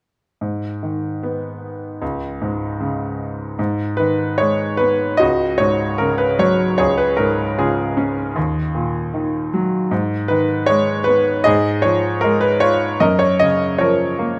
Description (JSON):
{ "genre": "classical, lyrical solo piano", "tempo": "76 BPM", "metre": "4/4", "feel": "rubato", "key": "G# dorian", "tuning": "A4 = 439 Hz", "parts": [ { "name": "bright grand piano", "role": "solo", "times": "0.4-14.4 s", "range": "C#2 to D#5", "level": "-18 LUFS", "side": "equal", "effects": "none" } ], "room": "moderate recital hall reverb, RT60 1.5 s", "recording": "close, detailed microphones", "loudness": "-18 LUFS", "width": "mono", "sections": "0.4-3.6 A section; 3.6-14.4 B section", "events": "none", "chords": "0.4 G#m; 2.0 C#5; 3.6 G#m; 5.2 C#sus4; 6.8 C#6; 8.4 D#m; 9.9 G#m; 11.5 G#m69; 13.0 F#maj7", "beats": "| 0.42 1.23 2.02 2.79 | 3.58 4.39 5.20 6.00 | 6.79 7.58 8.37 9.14 | 9.91 10.69 11.46 12.22 | 13.00 13.79" }